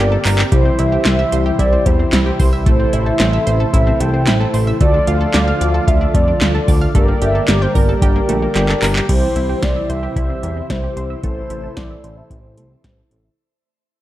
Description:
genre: synth-pop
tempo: 112 BPM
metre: 4/4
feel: straight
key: C mixolydian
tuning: A4 = 439 Hz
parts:
  - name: mellow horn-like synth lead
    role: melody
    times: 0.0-13.1 s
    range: Bb4 to G5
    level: -22 LUFS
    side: right 1 dB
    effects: chorus, low-pass filter, shimmer reverb
  - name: mellow synth brass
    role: accompaniment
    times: 0.0-13.3 s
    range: E4 to D5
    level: -23 LUFS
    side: left 2 dB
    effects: chorus, low-pass filter, shimmer reverb
  - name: brassy analog pad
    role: sustained chords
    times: 0.0-13.4 s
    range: C3 to G4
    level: -24 LUFS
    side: right 1 dB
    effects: chorus, low-pass filter, shimmer reverb
  - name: analog pluck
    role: arpeggios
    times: 0.0-13.3 s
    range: G3 to G5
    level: -26 LUFS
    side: right 4 dB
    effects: chorus, low-pass filter, analog delay, shimmer reverb
  - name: fat analog bass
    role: bass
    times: 0.0-13.3 s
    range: G1 to F2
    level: -18 LUFS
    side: equal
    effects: none
  - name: electro analog drum machine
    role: drums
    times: 0.3-13.2 s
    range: crash cymbal, handclaps, hi-hat, kick drum, snare drum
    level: -17 LUFS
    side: equal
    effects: overdrive
room: light reverb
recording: dark, warm production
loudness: -13 LUFS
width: side -14 dB against mid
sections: 0.0-9.1 A section; 9.1-13.4 B section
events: drum fill 0.0-0.5, 8.6-9.1; fade-out 9.1-13.4; filter sweep 9.1-13.4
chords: 0.0 Gmadd9; 0.5 C; 2.7 Am; 4.8 Dm; 6.9 Gmadd9; 9.1 C; 11.2 Am

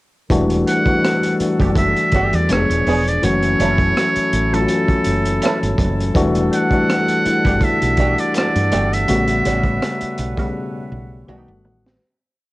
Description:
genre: R&B, neo-soul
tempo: 82 BPM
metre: 4/4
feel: swing 55% on 16ths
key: E dorian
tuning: A4 = 443 Hz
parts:
  - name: tine electric piano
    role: accompaniment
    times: 0.3-12.0 s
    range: B2 to Ab4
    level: -19 LUFS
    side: left 2 dB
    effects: cassette tape
  - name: warm brass ensemble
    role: sustained chords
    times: 0.3-12.0 s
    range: E3 to F#5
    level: -28 LUFS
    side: right 1 dB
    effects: cassette tape
  - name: woody fretless electric bass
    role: bass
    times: 0.3-12.0 s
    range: E1 to G2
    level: -21 LUFS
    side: equal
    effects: none
  - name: crunchy breakbeat drum kit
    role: drums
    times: 0.3-12.0 s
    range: hi-hat, kick drum, rim click, snare drum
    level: -22 LUFS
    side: equal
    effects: cassette tape
  - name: trumpet with metal mute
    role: melody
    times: 0.7-10.4 s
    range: A4 to F#5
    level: -20 LUFS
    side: right 1 dB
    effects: none
  - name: hollow-body jazz guitar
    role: second line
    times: 1.6-11.5 s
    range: G3 to A4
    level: -24 LUFS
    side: right 3 dB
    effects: wah, cassette tape
room: light reverb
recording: home recording on cassette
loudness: -14 LUFS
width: side -19 dB against mid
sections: 0.3-12.0 groove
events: fade-out 9.1-12.0; drum fill 10.5-12.0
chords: 0.3 Em11; 2.5 Fdim7; 3.2 F#m7; 6.2 Em11; 9.1 A13; 11.3 B7b13

